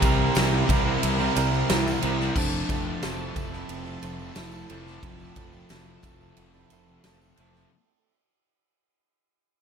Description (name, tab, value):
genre	rock, shoegaze and dream pop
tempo	90 BPM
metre	4/4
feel	straight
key	F major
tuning	A4 = 441 Hz
part	pure breathy sine lead	melody	0.0-7.4 s	C4 to G4	-35 LUFS	equal	chorus, slapback echo
part	phased string machine	sustained chords	0.0-7.7 s	A4 to C6	-38 LUFS	equal	ensemble chorus, phaser
part	crunchy overdriven guitar	riff	0.0-7.7 s	F2 to C4	-32 LUFS	equal	spring reverb
part	direct-recorded clean electric guitar	riff	0.0-7.7 s	C3 to Bb4	-30 LUFS	right 12 dB	reverse reverb
part	thick fuzz guitar	riff	0.0-7.7 s	F2 to C4	-33 LUFS	left 11 dB	distortion, ensemble chorus
part	fuzz fingered electric bass	bass	0.0-7.6 s	F1 to C2	-30 LUFS	left 1 dB	overdrive
part	huge arena drum kit	drums	0.0-7.6 s	crash cymbal, kick drum, ride cymbal, snare drum	-28 LUFS	equal	none
part	tambourine	percussion	0.0-7.6 s	none	-44 LUFS	left 9 dB	none
room	light reverb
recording	none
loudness	-22 LUFS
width	side -7 dB against mid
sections	0.0-7.7 A section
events	fade-out 0.0-7.7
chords	0.0 C7; 2.4 Fmaj7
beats	0.35 1.02 1.69 | 2.36 3.02 3.69 4.36 | 5.03 5.70 6.37 7.04